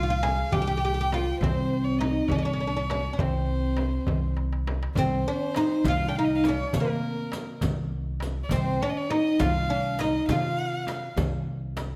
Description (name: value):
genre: Arabic maqam ensemble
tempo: 68 BPM (dotted quarters)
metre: 6/8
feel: straight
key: C maqam bayati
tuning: A4 = 438 Hz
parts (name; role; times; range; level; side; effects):
- oud; melody; 0.0-11.1 s; Bb3 to Ab4; -30 LUFS; equal; none
- warm violin; second line; 0.0-11.1 s; Bb4 to G5; -36 LUFS; equal; none
- upright bass; bass; 0.0-11.9 s; C2 to C3; -32 LUFS; equal; none
- darbuka; percussion; 0.2-11.9 s; none; -36 LUFS; equal; none
- frame drum; percussion; 0.2-11.9 s; none; -36 LUFS; equal; none
- riq; percussion; 5.0-11.9 s; none; -44 LUFS; equal; none
room: moderate recital hall reverb, RT60 1.3 s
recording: none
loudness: -26 LUFS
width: mono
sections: 0.0-5.0 A section; 5.0-12.0 B section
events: drum fill 4.4-5.0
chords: none